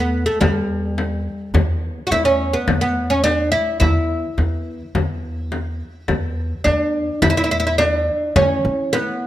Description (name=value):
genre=Arabic maqam ensemble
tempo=106 BPM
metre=4/4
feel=straight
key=E maqam rast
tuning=A4 = 436 Hz
part: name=oud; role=melody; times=0.0-9.3 s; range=G#3-50c to F#4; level=-18 LUFS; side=right 1 dB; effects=none
part: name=upright bass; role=bass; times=0.0-9.3 s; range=E2 to E3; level=-22 LUFS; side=equal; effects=none
part: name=frame drum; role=percussion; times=0.4-9.1 s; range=none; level=-22 LUFS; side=left 2 dB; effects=none
room=light reverb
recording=close, detailed microphones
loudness=-17 LUFS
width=side -13 dB against mid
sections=0.0-7.2 A section; 7.2-9.3 B section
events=none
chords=none